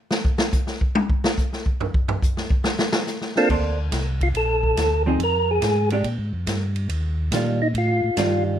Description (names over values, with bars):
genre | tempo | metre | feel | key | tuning
soul jazz organ trio | 141 BPM | 4/4 | swing 68% on 8ths | Bb major | A4 = 441 Hz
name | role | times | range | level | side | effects
swinging big-band drum kit | drums | 0.1-8.3 s | crash cymbal, hi-hat, kick drum, ride cymbal, snare drum, toms | -23 LUFS | equal | none
percussive tonewheel organ | melody | 3.4-8.4 s | Bb3 to Bb4 | -21 LUFS | equal | slow rotary speaker
vintage hollow-body jazz guitar | accompaniment | 3.5-8.6 s | Eb3 to C5 | -24 LUFS | right 2 dB | none
mellow tonewheel organ | bass | 3.5-8.6 s | Bb1 to Bb2 | -23 LUFS | equal | slow rotary speaker
room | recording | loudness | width
light reverb | lossy compression artefacts | -20 LUFS | side -10 dB against mid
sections
0.0-3.5 A section; 3.5-8.6 B section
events
drum solo 0.0-3.5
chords
0.0 N.C.; 2.6 F; 3.5 Bbmaj9; 5.2 Fm; 6.0 Bb5; 6.9 Ebmaj9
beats
| 0.11 0.54 0.96 1.38 | 1.80 2.22 2.65 3.07 | 3.49 3.92 4.34 4.77 | 5.19 5.62 6.04 6.47 | 6.90 7.32 7.75 8.18